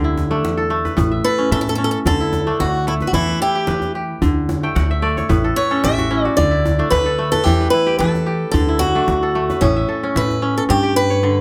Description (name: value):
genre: west african traditional, West African string and xylophone music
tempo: 111 BPM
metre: 4/4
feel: swing 53% on 16ths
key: unclear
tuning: A4 = 441 Hz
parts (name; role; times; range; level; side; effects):
- kora; arpeggios; 0.0-11.4 s; G2 to G5; -23 LUFS; equal; none
- upright bass; bass; 0.0-11.4 s; A1 to E3; -23 LUFS; equal; none
- djembe; percussion; 0.2-10.4 s; none; -26 LUFS; equal; none
- picked swing-style acoustic guitar; melody; 1.2-11.4 s; C#4 to E5; -21 LUFS; equal; none
room: light reverb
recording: close, detailed microphones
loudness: -18 LUFS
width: mono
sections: 0.0-10.7 A section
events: kora fill 4.6-6.4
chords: 0.0 D5; 1.0 A; 2.1 D5; 3.1 Em; 4.2 D5; 5.3 A; 6.4 D5; 7.5 Em; 8.5 D; 9.6 A; 10.7 G